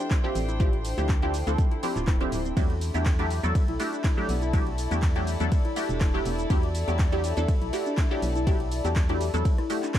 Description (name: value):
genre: deep house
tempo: 122 BPM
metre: 4/4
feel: swing 53% on 16ths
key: unclear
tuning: A4 = 437 Hz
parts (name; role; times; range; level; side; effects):
- deep dark ambient pad; sustained chords; 0.0-10.0 s; A4 to C6; -37 LUFS; left 2 dB; chorus, built-in reverb, sidechain pumping
- warbly dusty pluck; arpeggios; 0.0-10.0 s; B3 to F#4; -35 LUFS; left 1 dB; wide subtle chorus, sidechain pumping, digital delay
- filtered dub chord stab; stabs; 0.0-10.0 s; F3 to A4; -31 LUFS; equal; phaser, analog chorus, sidechain pumping, digital delay
- deep house drum kit; drums; 0.0-10.0 s; handclaps, hi-hat, ride cymbal, rim click, shaker; -38 LUFS; right 1 dB; none
- warm studio string section; texture; 0.0-10.0 s; D4 to G5; -37 LUFS; left 2 dB; sidechain pumping
- electronic kick drum; drums; 0.1-10.0 s; none; -24 LUFS; equal; none
- organ-like FM bass; bass; 0.4-9.4 s; D1 to E2; -28 LUFS; equal; sidechain pumping
room: little or no reverb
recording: dark, warm production, vinyl crackle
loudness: -23 LUFS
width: side -11 dB against mid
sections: 0.0-10.0 A section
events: none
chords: 0.0 Dm11; 2.6 Em11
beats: 0.11 | 0.60 1.09 1.58 2.08 | 2.57 3.06 3.55 4.04 | 4.54 5.03 5.52 6.01 | 6.50 6.99 7.49 7.98 | 8.47 8.96 9.45 9.95